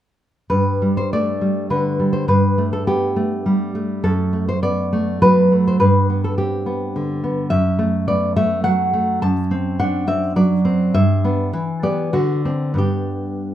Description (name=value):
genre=romantic piece for solo classical guitar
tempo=86-109 BPM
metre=3/4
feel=rubato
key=G major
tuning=A4 = 440 Hz
part: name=nylon-string guitar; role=solo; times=0.5-13.5 s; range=F#2 to A5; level=-16 LUFS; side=equal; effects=none
room=moderate large studio reverb, RT60 0.9 s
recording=band playing live in one room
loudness=-16 LUFS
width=side -11 dB against mid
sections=0.5-13.5 A section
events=none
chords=0.5 G5; 2.3 Gadd9; 4.0 D/F#; 5.8 G; 7.5 D69/F#; 9.2 D7/F#; 10.9 G; 11.5 Em7; 12.1 D7; 12.8 G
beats=| 0.50 1.12 1.70 | 2.29 2.87 3.46 | 4.04 4.63 5.23 | 5.82 6.39 6.96 | 7.51 8.08 8.65 | 9.22 9.79 10.36 | 10.95 11.53 12.13 | 12.80 13.49